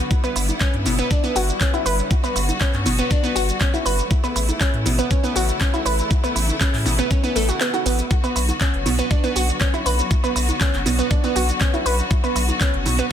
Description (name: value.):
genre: progressive house.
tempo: 120 BPM.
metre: 4/4.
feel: straight.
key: B minor.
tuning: A4 = 439 Hz.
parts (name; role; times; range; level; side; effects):
bright studio string section; sustained chords; 0.0-13.1 s; C#3 to F#4; -28 LUFS; left 2 dB; sidechain pumping.
electronic kick drum; drums; 0.1-12.7 s; none; -19 LUFS; equal; studio reverb.
pop drum kit; drums; 0.1-13.1 s; handclaps, hi-hat, shaker; -26 LUFS; right 1 dB; studio reverb.
congas and cowbell; percussion; 0.1-13.0 s; none; -31 LUFS; right 4 dB; sidechain pumping on perc, studio reverb.
analog pluck; arpeggios; 0.2-13.1 s; B2 to B4; -23 LUFS; right 1 dB; chorus, sidechain pumping, ping-pong delay.
round analog bass; bass; 0.4-13.0 s; F#1 to A2; -22 LUFS; equal; sidechain pumping.
room: light reverb.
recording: dense, heavily limited modern master.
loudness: -17 LUFS.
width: side -9 dB against mid.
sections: 0.0-13.1 A section.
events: kick drops out 7.6-8.1.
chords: 0.1 G6; 4.1 A; 8.1 Bm.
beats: | 0.11 0.61 1.11 1.61 | 2.11 2.61 3.11 3.61 | 4.11 4.61 5.11 5.61 | 6.11 6.61 7.11 7.61 | 8.11 8.61 9.11 9.61 | 10.11 10.61 11.11 11.61 | 12.11 12.61 13.11.